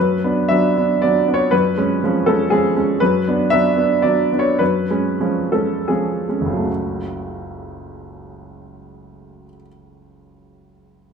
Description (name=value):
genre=classical, romantic character piece for solo piano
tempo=73-126 BPM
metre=3/4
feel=rubato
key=F# minor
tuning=A4 = 441 Hz
part: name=clear baby grand piano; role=solo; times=0.0-11.1 s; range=F#1 to E5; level=-16 LUFS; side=right 1 dB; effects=none
room=moderate recital hall reverb, RT60 1.4 s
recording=minimal, uncompressed stereo recording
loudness=-15 LUFS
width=side -6 dB against mid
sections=0.0-6.7 A section; 6.7-11.1 B section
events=slowing down 2.3-6.7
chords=0.0 Bm/F#; 1.5 C#7/F#; 3.0 Bm/F#; 4.6 C#7/F#; 6.7 F#m